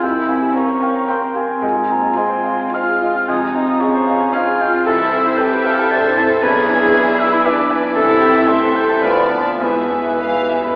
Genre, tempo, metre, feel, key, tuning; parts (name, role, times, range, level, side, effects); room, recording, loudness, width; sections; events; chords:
classical; 100-121 BPM; 3/4; rubato; F minor, A minor from 4.9 s; A4 = 440 Hz
clear grand piano; melody; 0.0-10.8 s; B1 to B5; -19 LUFS; equal
mellow clarinet; second line; 0.0-10.8 s; C4 to B4; -24 LUFS; equal
mellow hollow silver concert flute; second line; 0.0-10.8 s; G#5 to A6; -20 LUFS; equal
mellow oboe; second line; 0.0-10.8 s; E5 to B5; -22 LUFS; equal
mellow bassoon; accompaniment; 0.0-10.8 s; E3 to Bb3; -25 LUFS; equal
warm French horn section; sustained chords; 0.0-9.8 s; E3 to B4; -25 LUFS; equal
dark studio double bass section; bass; 0.0-10.8 s; F1 to F2; -40 LUFS; equal
warm studio cello section; bass; 0.0-10.8 s; G#3 to A4; -22 LUFS; equal
warm studio violin section; melody; 0.6-10.8 s; Ab4 to F5; -29 LUFS; equal
warm studio violin section; second line; 0.6-10.8 s; F4 to D5; -25 LUFS; equal
dark studio viola section; accompaniment; 0.6-10.8 s; A3 to E4; -26 LUFS; equal
timpani; percussion; 9.6-10.8 s; E2; -43 LUFS; equal
wet concert hall reverb, RT60 2.2 s; heard from further back in the room, AM radio sound; -13 LUFS; side -28 dB against mid
0.0-10.8 A section
timpani fill 9.6-10.8
0.0 C7/F; 1.6 Fm/Ab; 3.3 Fm; 4.9 Am/C; 6.4 E7/B; 8.0 Am/C; 9.0 Bdim/D; 9.6 E